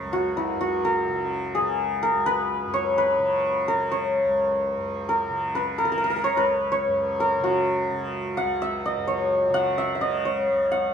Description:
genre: indian classical, Hindustani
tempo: 128 BPM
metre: 4/4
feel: straight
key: C# raga bageshri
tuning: A4 = 436 Hz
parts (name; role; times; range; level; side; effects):
- santur; melody; 0.0-10.9 s; E4 to F#5; -22 LUFS; left 1 dB; none
- tanpura; drone; 0.0-10.9 s; C#2 to C#3; -32 LUFS; right 2 dB; none
room: light reverb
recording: minimal, uncompressed stereo recording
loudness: -22 LUFS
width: side -7 dB against mid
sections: 0.0-10.9 A section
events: none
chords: none

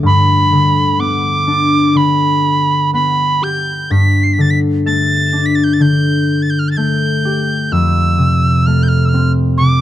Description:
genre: celtic folk, Celtic slow air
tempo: 63 BPM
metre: 4/4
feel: rubato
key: unclear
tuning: A4 = 439 Hz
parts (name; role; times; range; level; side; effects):
- concert harp; accompaniment; 0.0-9.8 s; F2 to G4; -13 LUFS; left 1 dB; none
- bright reedy wooden whistle; melody; 0.1-9.8 s; B5 to C7; -16 LUFS; right 2 dB; none
room: studio ambience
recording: dry, close 1970s-style studio recording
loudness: -11 LUFS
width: side -12 dB against mid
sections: 0.0-9.8 A section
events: none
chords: 0.0 G; 7.7 Fmaj7

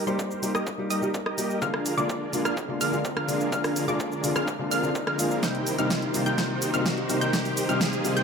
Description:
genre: EDM, festival progressive house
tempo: 126 BPM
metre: 4/4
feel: straight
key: unclear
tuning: A4 = 440 Hz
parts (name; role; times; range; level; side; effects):
- lush unison pad; sustained chords; 0.0-8.2 s; D3 to C5; -34 LUFS; right 1 dB; chorus, sidechain pumping
- wide unison pluck; arpeggios; 0.0-8.2 s; C6 to G6; -32 LUFS; equal; auto-pan, sidechain pumping, ping-pong delay
- dense compressed supersaw; riff; 0.0-8.2 s; D4 to G5; -29 LUFS; right 1 dB; sidechain pumping, low-pass filter, ping-pong delay
- riser; sound effects; 1.8-8.2 s; none; -36 LUFS; right 1 dB; none
- felt-muted upright piano; accompaniment; 0.1-8.2 s; C3 to G4; -29 LUFS; left 3 dB; sidechain pumping, ping-pong delay
- big-room dance drum kit; drums; 0.1-8.2 s; cabasa, hi-hat, rim click, snare drum; -30 LUFS; right 1 dB; small room ambience
- electronic kick drum; drums; 0.2-7.9 s; none; -36 LUFS; right 1 dB; overdrive, high-pass filter on kick, small room ambience, high-pass filter on room
room: moderate lush hall reverb, RT60 1.6 s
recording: none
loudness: -24 LUFS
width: side -6 dB against mid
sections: 0.0-8.2 A section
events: build-up 0.0-8.2; filter sweep on supersaw synth 0.0-8.2; riser 1.8-8.2; drum fill 5.4-8.2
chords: 0.0 Eb; 1.6 Bb7/D; 5.4 Cm7

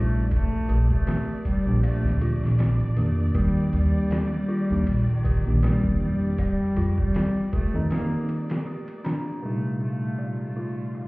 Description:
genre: trip hop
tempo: 79 BPM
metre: 4/4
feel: swing 56% on 16ths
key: unclear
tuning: A4 = 440 Hz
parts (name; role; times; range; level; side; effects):
- warm cello; melody; 0.0-11.1 s; Eb3 to Bb3; -28 LUFS; equal; vintage 12-bit sampler grit, tape echo
- tine electric piano; accompaniment; 0.0-11.1 s; Bb2 to C5; -28 LUFS; equal; tremolo, vintage 12-bit sampler grit
- warm symphonic violin section; sustained chords; 0.0-11.1 s; F4 to D5; -46 LUFS; equal; low-pass filter
- dark detuned synth bell; arpeggios; 0.0-11.1 s; D4 to D5; -38 LUFS; equal; chorus, low-pass filter, tape echo
- upright bass; bass; 0.0-7.9 s; Bb1 to Bb2; -23 LUFS; equal; none
- trip hop sampler-style drum kit; drums; 0.3-11.1 s; kick drum, ride cymbal, snare drum; -27 LUFS; equal; low-pass filter on snare, low-pass filter on cymbals, low-pass filter on kick
room: little or no reverb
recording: heard muffled through a wall, club reverb, vinyl crackle, EQ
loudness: -22 LUFS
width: side -23 dB against mid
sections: 0.0-9.4 A section; 9.4-11.1 B section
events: break 7.9-9.4; filter sweep on violin section 9.4-11.1; filter sweep on synth bell 9.4-11.1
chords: 0.3 Bb; 6.4 F7; 9.4 Cm7

